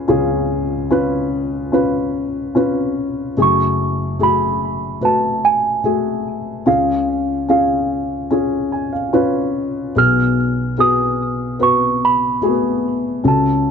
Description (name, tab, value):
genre	pop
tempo	73 BPM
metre	4/4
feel	straight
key	F# harmonic minor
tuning	A4 = 440 Hz
part	dark baby grand piano	accompaniment	0.0-13.7 s	F#1 to G#5	-17 LUFS	left 2 dB	none
part	small celesta	melody	3.4-13.7 s	E#5 to E#6	-17 LUFS	right 4 dB	none
room	light reverb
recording	dark, warm production, nothing above 7.8 kHz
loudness	-15 LUFS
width	side -6 dB against mid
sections	0.0-3.4 A section; 3.4-13.7 B section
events	grand piano fill 8.3-10.0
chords	0.0 C#; 3.4 F#madd9; 6.7 C#; 10.0 G#m7/B